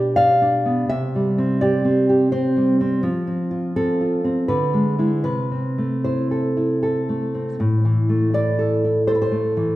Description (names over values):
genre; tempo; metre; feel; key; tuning
romantic piece for solo classical guitar; 74-85 BPM; 3/4; rubato; A minor; A4 = 440 Hz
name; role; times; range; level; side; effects
nylon-string guitar; solo; 0.0-9.8 s; A2 to G5; -17 LUFS; equal; none
room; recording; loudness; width
wet recital hall reverb, RT60 1.7 s; recorded in a church or concert hall; -17 LUFS; side -16 dB against mid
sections
0.0-7.6 A section; 7.6-9.8 A section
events
none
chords
0.0 G/B; 0.9 C; 3.0 F; 4.5 E7/D; 5.3 Am/C; 7.6 A5